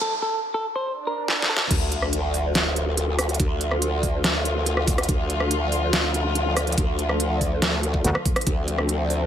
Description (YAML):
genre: heavy wobble dubstep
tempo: 142 BPM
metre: 4/4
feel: half-time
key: D minor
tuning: A4 = 443 Hz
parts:
  - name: clean electric guitar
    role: melody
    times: 0.0-1.6 s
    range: A4 to C5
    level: -27 LUFS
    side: equal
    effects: digital delay
  - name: swell and sub drop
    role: sound effects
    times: 1.0-3.4 s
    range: none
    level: -33 LUFS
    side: right 1 dB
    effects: none
  - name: dubstep drum kit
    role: drums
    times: 1.3-9.2 s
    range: crash cymbal, hi-hat, rim click, snare drum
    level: -24 LUFS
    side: right 1 dB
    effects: none
  - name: dark chamber string section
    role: sustained chords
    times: 1.7-9.3 s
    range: D3 to F4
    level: -30 LUFS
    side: left 2 dB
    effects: sidechain pumping
  - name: growl bass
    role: bass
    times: 1.7-9.3 s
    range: D2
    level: -24 LUFS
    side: equal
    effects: chorus, overdrive
  - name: electronic kick drum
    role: drums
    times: 1.7-8.6 s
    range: none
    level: -24 LUFS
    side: equal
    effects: overdrive
  - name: metallic wobble bass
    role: bass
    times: 8.0-8.1 s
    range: D2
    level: -20 LUFS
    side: equal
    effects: chorus, overdrive
room: light reverb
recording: high-pass filter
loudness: -21 LUFS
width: side -10 dB against mid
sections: 0.0-1.7 A section; 1.7-9.3 B section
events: build-up 0.0-1.7; filter sweep 0.0-1.7; break 0.0-1.7; swell 1.0-1.7; drum fill 1.3-1.7; drop 1.7-9.3; impact 1.7-3.4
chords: 0.0 N.C.; 1.7 Dm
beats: | 0.02 0.44 0.86 1.28 | 1.71 2.13 2.55 2.97 | 3.40 3.82 4.24 4.66 | 5.09 5.51 5.93 6.35 | 6.78 7.20 7.62 8.04 | 8.47 8.89